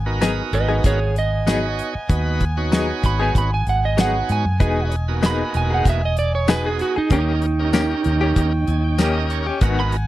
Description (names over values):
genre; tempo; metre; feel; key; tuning
straight-eighth soul blues; 96 BPM; 4/4; straight; G# minor; A4 = 442 Hz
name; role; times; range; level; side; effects
clear horn section; sustained chords; 0.0-10.1 s; B3 to G#5; -32 LUFS; equal; none
vintage muted fingered electric bass; bass; 0.0-10.1 s; E1 to G#2; -21 LUFS; equal; none
bright tonewheel organ; accompaniment; 0.1-10.0 s; A#3 to G#5; -26 LUFS; right 4 dB; slow rotary speaker, overdrive
direct-recorded clean electric guitar; stabs; 0.2-9.8 s; D#3 to G#4; -23 LUFS; left 5 dB; tremolo
damped 70s drum kit; drums; 0.2-10.1 s; hi-hat, kick drum, snare drum, tambourine; -19 LUFS; equal; none
electric slide guitar; second line; 0.5-9.9 s; D#4 to B5; -23 LUFS; right 5 dB; none
room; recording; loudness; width
little or no reverb; dry, close 1970s-style studio recording, lossy compression artefacts; -17 LUFS; side -15 dB against mid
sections
0.0-10.1 A section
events
electric slide guitar solo 0.0-10.1; tonewheel organ fill 8.4-9.6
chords
0.0 G#m7; 4.6 Emaj7; 7.1 D#7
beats
0.21 0.84 1.47 | 2.10 2.73 3.35 3.98 | 4.61 5.24 5.86 6.49 | 7.12 7.74 8.37 9.00 | 9.62